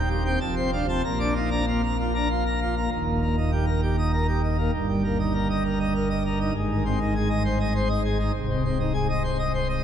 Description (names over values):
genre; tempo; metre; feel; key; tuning
classical, organ toccata; 99 BPM; 3/4; straight; Eb major; A4 = 440 Hz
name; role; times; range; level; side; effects
pipe organ, plenum; solo; 0.0-9.8 s; C1 to Bb5; -22 LUFS; equal; none
room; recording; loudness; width
wet cathedral reverb, RT60 6.2 s; none; -22 LUFS; side -9 dB against mid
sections
0.0-2.9 A section; 2.9-9.8 B section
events
none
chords
0.4 F; 1.0 Bb; 2.9 Eb; 4.7 Eb/G; 6.5 Ab; 8.3 Ab/C